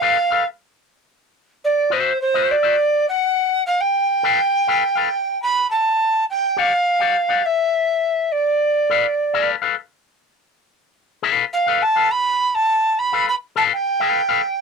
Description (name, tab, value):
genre	funk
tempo	103 BPM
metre	4/4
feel	straight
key	unclear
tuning	A4 = 441 Hz
part	breathy alto recorder	melody	0.0-14.6 s	C5 to B5	-17 LUFS	right 2 dB	none
part	electric guitar with an envelope filter	accompaniment	0.0-14.4 s	F#4 to F#5	-19 LUFS	left 11 dB	none
room	light reverb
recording	dry, close 1970s-style studio recording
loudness	-16 LUFS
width	side -5 dB against mid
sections	0.0-6.3 A section; 6.3-14.6 B section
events	none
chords	0.0 B7(b5, no3)/A; 1.6 D9; 4.0 G9; 6.3 Em9; 8.6 G9 (rootless)